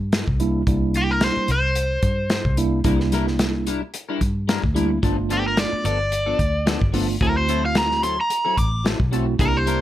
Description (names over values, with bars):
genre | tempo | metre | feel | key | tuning
straight-eighth soul blues | 110 BPM | 4/4 | swing 55% on 16ths | unclear | A4 = 441 Hz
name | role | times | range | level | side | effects
vintage muted fingered electric bass | bass | 0.0-9.8 s | G1 to G2 | -24 LUFS | equal | none
warm soul drum kit | drums | 0.1-9.8 s | hi-hat, kick drum, snare drum | -23 LUFS | equal | none
mellow tine electric piano | accompaniment | 0.4-9.8 s | G3 to G4 | -23 LUFS | right 3 dB | medium stereo tremolo
crunchy overdriven guitar | melody | 1.0-9.8 s | G4 to D6 | -22 LUFS | equal | plate reverb
clean electric guitar | stabs | 2.8-9.8 s | F3 to Bb4 | -27 LUFS | left 5 dB | analog chorus
room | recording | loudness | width
light reverb | none | -18 LUFS | side -13 dB against mid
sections
0.0-9.8 A section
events
none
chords
0.0 C9; 5.0 G9; 7.2 D9